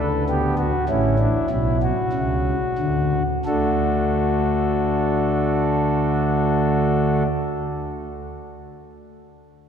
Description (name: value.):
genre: classical, baroque-style 3-part fugue for pipe organ.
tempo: 44-51 BPM.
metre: 4/4.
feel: straight.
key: D major.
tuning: A4 = 440 Hz.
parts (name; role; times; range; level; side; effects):
pipe organ, principal; solo; 0.0-7.3 s; A1 to A4; -19 LUFS; equal; none.
room: wet cathedral reverb, RT60 4.6 s.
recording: minimal, uncompressed stereo recording.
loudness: -18 LUFS.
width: side -7 dB against mid.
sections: 0.0-3.5 A section; 3.5-8.8 B section.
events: slowing down 0.0-3.5.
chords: 0.0 D; 0.9 A; 3.5 D.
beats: 0.89 2.14 | 3.45 4.79 6.13.